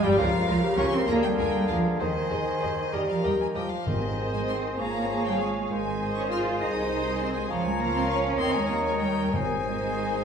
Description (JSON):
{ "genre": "quick classical-period movement for symphony orchestra", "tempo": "65 BPM (dotted quarters)", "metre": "6/8", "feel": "rubato", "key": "Ab major", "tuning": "A4 = 440 Hz", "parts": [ { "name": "warm studio violin section", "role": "melody", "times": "0.0-10.2 s", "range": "G3 to F5", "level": "-37 LUFS", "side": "left 2 dB", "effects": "none" }, { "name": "clear clarinet", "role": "second line", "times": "0.0-10.2 s", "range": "G3 to Db5", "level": "-34 LUFS", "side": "left 2 dB", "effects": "none" }, { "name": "hollow small flute group", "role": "second line", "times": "0.0-10.2 s", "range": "G4 to Bb5", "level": "-34 LUFS", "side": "left 3 dB", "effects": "none" }, { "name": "rich chamber violin section", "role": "second line", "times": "0.0-10.2 s", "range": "Eb5 to F6", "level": "-35 LUFS", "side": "left 3 dB", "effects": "none" }, { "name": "warm cor anglais", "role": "second line", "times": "0.0-10.2 s", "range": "G3 to Eb5", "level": "-37 LUFS", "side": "right 1 dB", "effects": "none" }, { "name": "rich chamber viola section", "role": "accompaniment", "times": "0.0-10.2 s", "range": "G3 to Db5", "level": "-36 LUFS", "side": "equal", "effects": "none" }, { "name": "warm bassoon", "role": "accompaniment", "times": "0.0-10.2 s", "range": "Db3 to G3", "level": "-33 LUFS", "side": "right 1 dB", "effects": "none" }, { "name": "dark French horn section", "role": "sustained chords", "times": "0.0-10.2 s", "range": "G3 to Db5", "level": "-33 LUFS", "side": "left 3 dB", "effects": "none" }, { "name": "rich chamber double bass section", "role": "bass", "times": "0.0-10.2 s", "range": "G1 to Eb2", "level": "-35 LUFS", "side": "right 2 dB", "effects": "none" }, { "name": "warm chamber cello section", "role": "bass", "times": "0.0-10.2 s", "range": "Eb3 to F4", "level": "-29 LUFS", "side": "right 2 dB", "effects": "none" }, { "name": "timpani", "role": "percussion", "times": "3.9-4.8, 9.3-10.2 s", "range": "Ab2", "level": "-34 LUFS", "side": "equal", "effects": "none" } ], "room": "wet recital hall reverb, RT60 1.6 s", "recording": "recorded in a church or concert hall", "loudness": "-24 LUFS", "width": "side -7 dB against mid", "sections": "0.0-10.2 A section", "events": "none", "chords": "0.2 Bbm/Db; 1.1 Bb7/D; 2.0 Ab/Eb; 2.9 Eb; 3.9 Ab; 4.8 Db/Ab; 5.7 Ab; 6.6 Ab/C; 7.5 Bbm/Db; 8.4 Eb7; 9.3 Ab" }